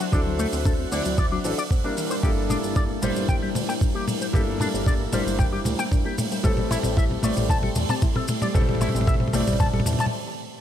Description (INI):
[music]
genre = nu-disco, nu disco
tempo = 114 BPM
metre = 4/4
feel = straight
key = G dorian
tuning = A4 = 440 Hz
[part]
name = warm concert grand piano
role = accompaniment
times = 0.0-10.1 s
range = F#3 to D5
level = -29 LUFS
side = left 2 dB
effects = dub echo
[part]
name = string machine, full ensemble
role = sustained chords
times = 0.0-10.1 s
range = G3 to C6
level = -33 LUFS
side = equal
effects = phaser, ensemble chorus, sidechain pumping
[part]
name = soft round pluck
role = arpeggios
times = 0.0-10.1 s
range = E3 to F#4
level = -32 LUFS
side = left 2 dB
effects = chorus, sidechain pumping, ping-pong delay
[part]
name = electric guitar with an envelope filter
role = riff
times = 0.0-10.0 s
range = D3 to A5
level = -30 LUFS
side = left 3 dB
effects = analog chorus, low-pass filter, dub echo
[part]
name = damped 70s drum kit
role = drums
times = 0.0-10.2 s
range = hi-hat, shaker, toms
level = -27 LUFS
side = equal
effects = none
[part]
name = chorused synth bass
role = bass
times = 0.1-10.0 s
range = G1 to E2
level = -30 LUFS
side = right 1 dB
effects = tube saturation
[part]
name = electronic kick drum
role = drums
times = 0.1-9.7 s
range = none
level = -23 LUFS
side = right 1 dB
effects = overdrive
[sound]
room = light reverb, small room reverb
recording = none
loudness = -21 LUFS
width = side -10 dB against mid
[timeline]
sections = 0.0-10.6 A section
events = build-up 0.0-10.6; drum fill 0.0-10.1; filter sweep on string machine 0.0-10.6; filter sweep on synth arpeggio sound 0.0-10.6; stop 10.1-10.6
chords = 0.0 D9; 2.0 Gm69; 6.4 Am7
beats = | 0.13 0.66 1.18 1.71 | 2.23 2.76 3.29 3.81 | 4.34 4.87 5.39 5.92 | 6.45 6.97 7.50 8.02 | 8.55 9.08 9.60 10.13